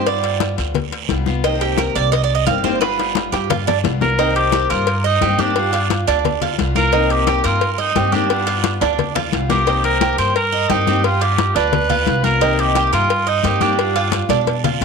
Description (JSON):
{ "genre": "latin, Cuban son and guajira", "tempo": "175 BPM", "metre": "4/4", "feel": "straight", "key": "C minor", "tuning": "A4 = 438 Hz", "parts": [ { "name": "picked steel-string acoustic guitar", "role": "accompaniment", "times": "0.0-14.8 s", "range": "C3 to G4", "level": "-24 LUFS", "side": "left 12 dB", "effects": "none" }, { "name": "Cuban tres", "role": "arpeggios", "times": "0.0-14.8 s", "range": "D4 to F5", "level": "-20 LUFS", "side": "right 13 dB", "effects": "slapback echo" }, { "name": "upright bass", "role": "bass", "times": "0.0-14.8 s", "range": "G1 to B2", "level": "-22 LUFS", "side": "equal", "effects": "none" }, { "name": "congas", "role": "percussion", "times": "0.1-14.8 s", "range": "none", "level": "-23 LUFS", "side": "left 11 dB", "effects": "none" }, { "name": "cowbell and bongos", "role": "percussion", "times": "0.1-14.8 s", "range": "none", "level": "-24 LUFS", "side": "left 14 dB", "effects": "none" }, { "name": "guiro", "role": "percussion", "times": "0.1-14.8 s", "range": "none", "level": "-31 LUFS", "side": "right 16 dB", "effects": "none" }, { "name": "warm cor anglais", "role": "melody", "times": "4.0-14.3 s", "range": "D4 to C5", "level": "-19 LUFS", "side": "right 1 dB", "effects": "none" } ], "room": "light reverb, small room ambience", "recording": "1960s-style stereo with parts hard left and right", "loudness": "-15 LUFS", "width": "side -5 dB against mid", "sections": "0.0-4.2 A section; 4.2-14.8 B section", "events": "Cuban tres solo 0.0-4.2; drum fill 2.8-4.2, 8.8-9.7, 14.3-14.8", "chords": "0.1 G7; 1.4 Cm7; 2.8 G7; 4.2 Cm7; 5.6 G7; 6.9 Cm7; 8.3 G7; 9.7 Cm7; 11.0 G7; 12.4 Cm7; 13.8 G7" }